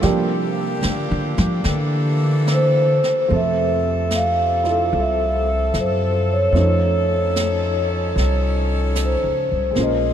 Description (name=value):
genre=jazz ballad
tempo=74 BPM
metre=4/4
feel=swing 68% on 8ths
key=F major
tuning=A4 = 440 Hz
part: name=warm baby grand piano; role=accompaniment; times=0.0-10.1 s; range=C3 to Bb4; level=-26 LUFS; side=right 3 dB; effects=lush chorus
part: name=clear saxophone section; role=sustained chords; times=0.0-10.1 s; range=C3 to A4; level=-26 LUFS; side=left 3 dB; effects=none
part: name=upright bass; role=bass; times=0.0-10.1 s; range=Bb1 to F3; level=-21 LUFS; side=equal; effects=none
part: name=jazz brush drum kit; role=drums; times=0.0-10.1 s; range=brushed snare drum, hi-hat, snare drum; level=-31 LUFS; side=equal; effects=none
part: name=vibraphone with soft mallets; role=melody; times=2.5-10.1 s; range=C5 to F5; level=-20 LUFS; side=equal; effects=ping-pong delay
room=moderate huge ambient reverb, RT60 8.7 s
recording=dreamy mix soaked in reverb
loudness=-17 LUFS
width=side -9 dB against mid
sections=0.0-3.3 A section; 3.3-10.1 B section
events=upright bass solo 0.0-3.3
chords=0.0 Gm7; 1.6 C13; 3.3 Fmaj7; 6.5 F7b13